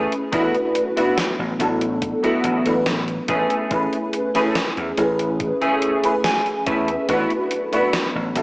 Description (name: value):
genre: vaporwave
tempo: 71 BPM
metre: 4/4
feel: straight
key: A major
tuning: A4 = 441 Hz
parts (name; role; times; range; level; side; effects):
- FM electric piano with soft pad layer; accompaniment; 0.0-8.4 s; A3 to B4; -21 LUFS; equal; phaser, ensemble chorus, analog delay
- warbly tape-like pad; sustained chords; 0.0-8.4 s; F#3 to G#4; -28 LUFS; equal; chorus, built-in reverb, vintage 12-bit sampler grit
- clean electric guitar; riff; 0.0-8.4 s; A3 to G#5; -23 LUFS; equal; ensemble chorus, low-pass filter, analog delay
- vintage slap bass; bass; 0.0-8.4 s; A1 to E2; -27 LUFS; equal; none
- gated 80s digital drum machine; drums; 0.1-8.4 s; hi-hat, snare drum; -26 LUFS; equal; gated reverb, gated reverb snare
- electronic kick drum; drums; 0.3-7.3 s; none; -32 LUFS; equal; none
room: moderate lush hall reverb, RT60 2.5 s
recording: cassette tape, small speaker sound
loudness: -18 LUFS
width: side -25 dB against mid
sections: 0.0-8.4 A section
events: clean electric guitar fill 5.8-7.1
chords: 0.3 D69/A; 3.3 Amaj7; 7.1 D69/A